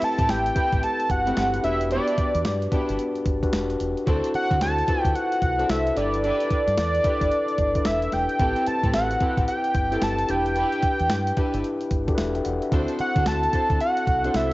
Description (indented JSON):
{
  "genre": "R&B, new jack swing",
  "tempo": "111 BPM",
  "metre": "4/4",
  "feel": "swing 62% on 16ths",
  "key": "A dorian",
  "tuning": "A4 = 439 Hz",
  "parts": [
    { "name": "fat analog lead", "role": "melody", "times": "0.0-14.5 s", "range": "D5 to A5", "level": "-24 LUFS", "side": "equal", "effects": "cassette tape" },
    { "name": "mellow tine electric piano", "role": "accompaniment", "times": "0.0-14.5 s", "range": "C4 to G5", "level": "-28 LUFS", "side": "left 2 dB", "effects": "cassette tape" },
    { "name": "deep dub fingered electric bass", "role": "bass", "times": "0.0-14.5 s", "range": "E1 to D3", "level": "-28 LUFS", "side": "equal", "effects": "none" },
    { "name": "clean 12-bit digital drum machine", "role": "drums", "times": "0.0-14.5 s", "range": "hi-hat, kick drum, snare drum", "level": "-26 LUFS", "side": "equal", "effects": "none" },
    { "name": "warm studio string section", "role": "stabs", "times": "0.2-14.4 s", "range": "A3 to C5", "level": "-32 LUFS", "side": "right 1 dB", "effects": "cassette tape" }
  ],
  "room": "moderate spring reverb, RT60 2.0 s",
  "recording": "home recording on cassette, nothing above 7.7 kHz",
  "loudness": "-20 LUFS",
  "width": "side -18 dB against mid",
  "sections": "0.0-14.5 A section",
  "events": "none",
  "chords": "0.0 Am7; 1.6 Em7; 4.1 D7; 6.0 G6; 8.4 Am7; 10.3 Em7; 12.7 D7"
}